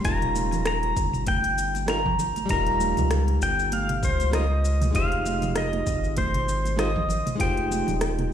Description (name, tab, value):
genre	sunset chillout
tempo	98 BPM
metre	4/4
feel	swing 57% on 16ths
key	unclear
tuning	A4 = 441 Hz
part	pedal steel guitar	melody	0.0-8.3 s	C5 to Bb5	-26 LUFS	left 1 dB	ping-pong delay
part	flamenco guitar	accompaniment	0.0-8.3 s	G3 to C5	-30 LUFS	moving between left 4 dB and right 4 dB	auto-pan, ping-pong delay
part	round analog bass	bass	0.0-8.3 s	Eb1 to Db2	-26 LUFS	equal	none
part	electronic kick drum	drums	0.0-7.5 s	none	-29 LUFS	equal	studio ambience
part	smooth R&B drum kit	drums	0.0-8.3 s	hi-hat, rim click, shaker, toms	-32 LUFS	equal	studio ambience
part	congas	percussion	0.4-8.3 s	none	-35 LUFS	right 5 dB	none
room	little or no reverb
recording	played on a big sound system in a bare room, large studio reverb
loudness	-22 LUFS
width	side -9 dB against mid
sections	0.0-8.3 A section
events	none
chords	0.0 Eb9; 4.9 Fm9